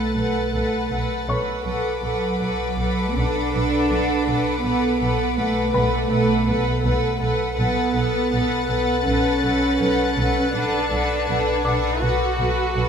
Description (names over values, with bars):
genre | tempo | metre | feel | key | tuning
cinematic | 81 BPM | 4/4 | straight | B minor | A4 = 439 Hz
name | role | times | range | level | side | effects
dark studio violin section | melody | 0.0-12.9 s | F#5 | -29 LUFS | left 3 dB | none
warm studio violin section | second line | 0.0-12.9 s | B4 | -26 LUFS | left 3 dB | none
rich studio viola section | accompaniment | 0.0-12.9 s | A4 | -27 LUFS | right 3 dB | none
dark chamber cello section | bass | 0.0-12.9 s | F#3 to F#4 | -24 LUFS | right 2 dB | none
deep rumbling drone | drone | 0.0-12.9 s | B1 | -29 LUFS | left 1 dB | built-in reverb
clear concert grand piano | texture | 0.0-12.9 s | B4 to D6 | -31 LUFS | left 2 dB | none
warm studio violin section | texture | 0.0-12.9 s | B5 to A6 | -32 LUFS | left 5 dB | none
dark studio double bass section | bass | 0.2-12.8 s | B1 | -27 LUFS | right 3 dB | none
room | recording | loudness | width
moderate scoring stage reverb, RT60 1.4 s | none | -19 LUFS | side -7 dB against mid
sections
0.0-12.9 A section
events
none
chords
0.0 Bm7